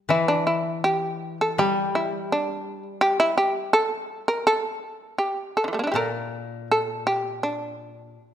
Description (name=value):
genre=japanese traditional, Japanese chamber music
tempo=82 BPM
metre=2/4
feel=rubato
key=G kumoi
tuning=A4 = 440 Hz
part: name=shamisen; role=melody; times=0.1-8.3 s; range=D3 to Bb4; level=-22 LUFS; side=right 1 dB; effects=none
part: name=koto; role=accompaniment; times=0.1-8.2 s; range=Bb2 to G3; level=-29 LUFS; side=left 4 dB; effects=none
room=moderate concert hall reverb, RT60 1.7 s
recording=none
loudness=-22 LUFS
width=side -10 dB against mid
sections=0.1-8.3 A section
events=none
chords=none